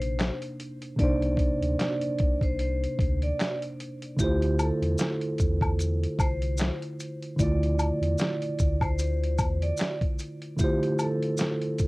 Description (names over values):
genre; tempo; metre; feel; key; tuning
lo-fi hip hop; 75 BPM; 4/4; swing 56% on 16ths; D minor; A4 = 440 Hz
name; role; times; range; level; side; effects
vibraphone with hard mallets; melody; 0.0-11.9 s; G4 to D5; -33 LUFS; right 1 dB; low-pass filter
tine electric piano; accompaniment; 0.0-11.9 s; C3 to D5; -30 LUFS; right 1 dB; medium stereo tremolo, low-pass filter, cassette tape
sub bass with octave; bass; 0.0-9.7 s; Bb1 to E2; -28 LUFS; equal; none
dusty soul sampler-style drum kit; drums; 0.0-11.9 s; handclaps, hi-hat, kick drum, snare drum; -28 LUFS; equal; cassette tape
maracas and woodblock; percussion; 4.2-11.9 s; none; -33 LUFS; left 2 dB; none
room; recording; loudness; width
light reverb; home recording on cassette; -24 LUFS; side -22 dB against mid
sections
0.0-11.9 A section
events
none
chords
0.0 Cm9; 4.2 Dm9